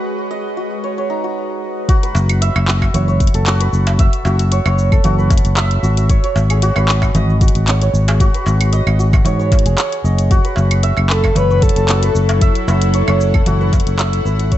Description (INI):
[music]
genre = organic downtempo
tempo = 114 BPM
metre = 4/4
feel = swing 54% on 16ths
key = F# dorian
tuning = A4 = 442 Hz
[part]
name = bowed-like drone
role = sustained chords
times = 0.0-1.4, 11.1-14.6 s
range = F#3 to F#5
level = -24 LUFS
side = left 2 dB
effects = built-in reverb, sidechain pumping
[part]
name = santur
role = arpeggios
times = 0.0-14.6 s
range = D#4 to E5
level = -21 LUFS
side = right 2 dB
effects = ping-pong delay
[part]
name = afro-pop drum kit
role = drums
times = 1.9-14.6 s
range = claves, handclaps, hi-hat, shaker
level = -22 LUFS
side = right 1 dB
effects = low-pass filter on hats, low-pass filter on perc, low-pass filter on snare
[part]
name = electronic kick drum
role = drums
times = 1.9-14.6 s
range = none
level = -14 LUFS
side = equal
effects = none
[part]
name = darbuka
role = percussion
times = 2.1-13.8 s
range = none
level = -24 LUFS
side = right 1 dB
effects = none
[part]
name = sustaining fretless electric bass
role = bass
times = 2.2-14.6 s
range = F#1 to G#2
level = -14 LUFS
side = equal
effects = sidechain pumping
[part]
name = breathy flute-like synth lead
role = melody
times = 11.1-12.2 s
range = A4 to B4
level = -20 LUFS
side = left 3 dB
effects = chorus, tremolo, ping-pong delay
[sound]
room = digital ambience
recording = nothing above 8.0 kHz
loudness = -12 LUFS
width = side -13 dB against mid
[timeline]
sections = 0.0-1.9 A section; 1.9-14.6 B section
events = break 1.4-1.9; fade-out 13.1-14.6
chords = 0.0 G#m7; 1.9 F#m7